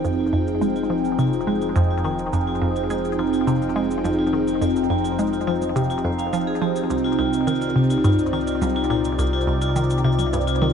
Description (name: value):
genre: ambient, sequencer-driven space music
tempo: 105 BPM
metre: 4/4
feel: straight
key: F dorian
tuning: A4 = 440 Hz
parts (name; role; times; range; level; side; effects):
- phased analog pad; sustained chords; 0.0-10.7 s; C3 to G5; -22 LUFS; equal; phaser, chorus
- vibraphone with hard mallets; arpeggios; 0.0-10.7 s; F4 to F5; -30 LUFS; moving between left 6 dB and equal; auto-pan, ping-pong delay
- hollow square pluck; riff; 0.0-10.7 s; C2 to Ab3; -23 LUFS; right 1 dB; chorus, phaser, ping-pong delay
- fat analog bass; bass; 0.0-10.7 s; F1 to C2; -32 LUFS; equal; none
- shaker and congas; percussion; 0.0-10.7 s; none; -37 LUFS; right 3 dB; ping-pong delay
room: moderate echo chamber reverb, RT60 2.0 s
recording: echo-heavy mix, nothing above 10.9 kHz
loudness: -19 LUFS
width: side -7 dB against mid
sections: 0.0-10.7 A section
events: fade-in on vibraphone 0.0-10.7; fade-in on analog synth bass 0.0-10.7; fade-in on drum 0.0-10.7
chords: 0.0 Fm7; 6.9 Cmadd9